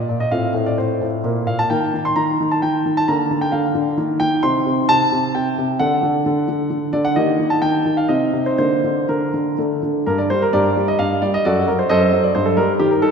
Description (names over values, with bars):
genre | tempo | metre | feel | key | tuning
classical-period piano sonatina | 131 BPM | 3/4 | rubato | G minor from 4.4 s | A4 = 441 Hz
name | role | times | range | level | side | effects
warm grand piano | solo | 0.0-13.1 s | F#2 to C6 | -16 LUFS | equal | none
room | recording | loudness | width
wet concert hall reverb, RT60 2.4 s | none | -16 LUFS | side -6 dB against mid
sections
0.0-10.1 A section; 10.1-13.1 B section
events
none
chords
0.3 F/A; 1.2 N.C.; 1.7 Eb5; 3.1 Bb/D; 4.0 Eb; 4.4 Cm; 5.8 D; 7.2 Eb; 8.1 Cm; 8.6 Bbadd9/D; 9.6 D5; 10.1 Gm; 11.5 F#dim7; 12.4 N.C.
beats
| 0.31 0.77 1.24 | 1.70 2.17 2.62 | 3.08 3.53 3.97 | 4.43 4.89 5.35 | 5.80 6.25 6.70 | 7.16 7.62 8.09 | 8.59 9.08 9.58 | 10.07 10.53 11.00 | 11.45 11.90 12.35 | 12.81